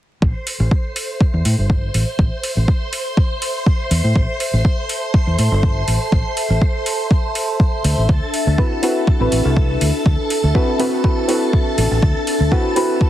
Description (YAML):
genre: deep house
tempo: 122 BPM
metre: 4/4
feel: swing 54% on 16ths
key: A dorian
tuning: A4 = 440 Hz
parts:
  - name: fingered electric bass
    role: bass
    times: 0.2-12.5 s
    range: G1 to A2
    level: -17 LUFS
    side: equal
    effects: sidechain pumping
  - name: electronic kick drum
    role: drums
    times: 0.2-13.1 s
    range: none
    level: -16 LUFS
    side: equal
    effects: overdrive
  - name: string machine, violins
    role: texture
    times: 0.2-13.1 s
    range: A4 to C6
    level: -26 LUFS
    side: equal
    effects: ensemble chorus
  - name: warbly tape-like pad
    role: texture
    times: 1.0-13.1 s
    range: D4 to A5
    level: -25 LUFS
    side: left 1 dB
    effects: chorus, built-in reverb, sidechain pumping
  - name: electronic hi-hat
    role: drums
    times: 0.5-12.9 s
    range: none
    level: -26 LUFS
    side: right 1 dB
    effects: overdrive
  - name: deep mellow chord stab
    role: stabs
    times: 8.6-13.1 s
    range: C4 to B4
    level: -20 LUFS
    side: equal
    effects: analog chorus, sidechain pumping, tape echo
room: light reverb, digital ambience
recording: heavily compressed radio sound, multiband compression, vinyl crackle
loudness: -15 LUFS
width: side -12 dB against mid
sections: 0.2-13.1 A section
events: none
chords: 0.2 Am; 7.8 D13